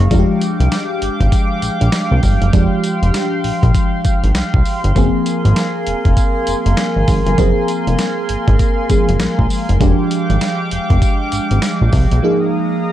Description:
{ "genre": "R&B, new jack swing", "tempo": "99 BPM", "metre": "4/4", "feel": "swing 62% on 16ths", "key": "F dorian", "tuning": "A4 = 435 Hz", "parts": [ { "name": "FM electric piano with soft pad layer", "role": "accompaniment", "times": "0.0-12.9 s", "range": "F3 to Ab4", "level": "-19 LUFS", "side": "equal", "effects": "chorus, phaser" }, { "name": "chorused pulse-width pad", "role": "sustained chords", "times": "0.0-12.9 s", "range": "Ab3 to Eb6", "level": "-21 LUFS", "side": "equal", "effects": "none" }, { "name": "fat analog bass", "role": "bass", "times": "0.0-12.2 s", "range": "F1 to C2", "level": "-14 LUFS", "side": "equal", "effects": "none" }, { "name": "dusty soul sampler-style drum kit", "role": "drums", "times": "0.0-12.2 s", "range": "hi-hat, kick drum, snare drum, tambourine", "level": "-17 LUFS", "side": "equal", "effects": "none" } ], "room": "little or no reverb", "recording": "dark, warm production", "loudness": "-13 LUFS", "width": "side -12 dB against mid", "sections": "0.0-12.9 A section", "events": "break 12.2-12.9", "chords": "0.1 Fm69; 5.0 Gbmaj9#11; 9.8 Fm69; 12.2 Bb7sus4" }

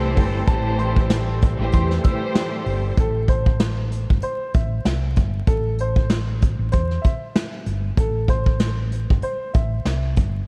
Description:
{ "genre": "hip hop, boom-bap hip-hop", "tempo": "96 BPM", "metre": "4/4", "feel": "swing 57% on 16ths", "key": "A minor", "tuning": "A4 = 440 Hz", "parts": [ { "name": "warm studio string section", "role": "accompaniment", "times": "0.0-2.9 s", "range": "A2 to C5", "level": "-29 LUFS", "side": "equal", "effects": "cassette tape, high-pass filter, low-pass filter" }, { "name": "bright tonewheel organ", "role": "sustained chords", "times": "0.0-2.9 s", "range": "G3 to C4", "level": "-36 LUFS", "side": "equal", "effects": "none" }, { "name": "warm horn section", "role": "stabs", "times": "0.0-2.6 s", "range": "E3 to A4", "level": "-34 LUFS", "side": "equal", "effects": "high-pass filter, low-pass filter, analog delay" }, { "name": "hollow-body short-scale fingered electric bass", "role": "bass", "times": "0.0-10.4 s", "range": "G1 to E2", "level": "-25 LUFS", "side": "equal", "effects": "none" }, { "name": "vintage brush drum kit", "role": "drums", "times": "0.2-10.3 s", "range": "hi-hat, kick drum, snare drum", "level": "-23 LUFS", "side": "equal", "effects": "none" }, { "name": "warm upright piano", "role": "melody", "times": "0.5-10.0 s", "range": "A4 to E6", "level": "-32 LUFS", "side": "equal", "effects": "high-pass filter, low-pass filter, analog delay" } ], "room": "light reverb, small room ambience", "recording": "vinyl crackle", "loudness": "-21 LUFS", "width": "mono", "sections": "0.0-3.0 A section; 3.0-10.5 B section", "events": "none", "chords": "0.0 Am7" }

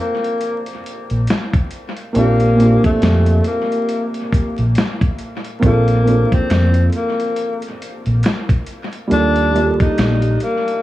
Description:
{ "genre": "lo-fi hip hop", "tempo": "69 BPM", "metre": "4/4", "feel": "swing 58% on 16ths", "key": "Bb major", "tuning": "A4 = 437 Hz", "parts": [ { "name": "breathy tenor saxophone", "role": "melody", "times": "0.0-10.8 s", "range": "A3 to Eb4", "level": "-21 LUFS", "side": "left 2 dB", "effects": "low-pass filter, dub echo" }, { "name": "felt-muted upright piano", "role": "accompaniment", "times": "0.0-10.8 s", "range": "Bb2 to D5", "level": "-20 LUFS", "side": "right 2 dB", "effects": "cassette tape, low-pass filter, dub echo" }, { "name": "dusty soul sampler-style drum kit", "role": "drums", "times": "0.2-10.8 s", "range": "hi-hat, kick drum, snare drum", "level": "-20 LUFS", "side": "equal", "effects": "dub echo" }, { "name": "deep dub fingered electric bass", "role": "bass", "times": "1.1-10.4 s", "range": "Bb1 to F2", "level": "-15 LUFS", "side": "equal", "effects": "none" }, { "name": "finger snaps", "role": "percussion", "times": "6.5-10.2 s", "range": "none", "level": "barely audible", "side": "none", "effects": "none" } ], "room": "light reverb, small room ambience", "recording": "echo-heavy mix, vinyl crackle", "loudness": "-14 LUFS", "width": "side -15 dB against mid", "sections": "0.0-5.6 A section; 5.6-10.8 A section", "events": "none", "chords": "0.0 Bbmaj7; 2.1 Bb6; 5.6 Bbmaj7; 9.1 Ebmaj9#11" }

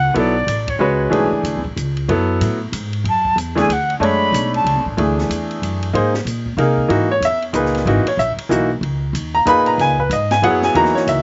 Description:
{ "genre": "modal jazz", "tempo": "187 BPM", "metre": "3/4", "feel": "swing 61% on 8ths", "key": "B dorian, C# dorian from 6.9 s", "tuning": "A4 = 440 Hz", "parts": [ { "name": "jazz flute", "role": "melody", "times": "0.0-1.0, 3.1-4.8 s", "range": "C#5 to B5", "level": "-21 LUFS", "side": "equal", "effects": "slapback echo" }, { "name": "upright bass", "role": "bass", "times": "0.0-11.2 s", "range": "G#1 to B#2", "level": "-24 LUFS", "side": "equal", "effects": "none" }, { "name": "bright upright piano", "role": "accompaniment", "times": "0.1-11.2 s", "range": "A#2 to B5", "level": "-19 LUFS", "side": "equal", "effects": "none" }, { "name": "open jazz drum kit", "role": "drums", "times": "0.2-11.2 s", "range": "hi-hat, kick drum, ride cymbal, snare drum", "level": "-33 LUFS", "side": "equal", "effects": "none" } ], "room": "little or no reverb", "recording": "recorded outdoors, with no room sound, nothing above 7.7 kHz", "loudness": "-18 LUFS", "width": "mono", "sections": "0.0-6.9 A section; 6.9-11.2 B section", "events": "band accent 0.6", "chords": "0.0 Bm11; 5.9 G#; 6.9 C#m11" }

